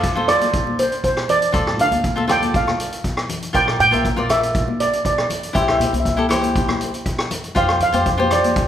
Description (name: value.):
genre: calypso.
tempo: 120 BPM.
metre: 4/4.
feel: straight.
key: F major.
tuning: A4 = 441 Hz.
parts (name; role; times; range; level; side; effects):
steel pan; melody; 0.0-8.7 s; C5 to G5; -19 LUFS; right 2 dB; none.
cavaquinho; accompaniment; 0.0-8.7 s; E4 to E5; -22 LUFS; left 1 dB; none.
upright bass; bass; 0.0-8.7 s; Bb1 to F3; -27 LUFS; equal; none.
street-band drum kit; drums; 0.0-8.7 s; hi-hat, kick drum, rim click; -22 LUFS; equal; none.
congas; percussion; 0.2-8.6 s; none; -27 LUFS; left 3 dB; none.
room: wet recital hall reverb, RT60 1.5 s.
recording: recorded in a church or concert hall.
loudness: -16 LUFS.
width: side -10 dB against mid.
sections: 0.0-8.7 A section.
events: none.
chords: 0.0 F; 1.5 Dm; 3.5 Bb6; 5.6 C; 7.6 Fsus2.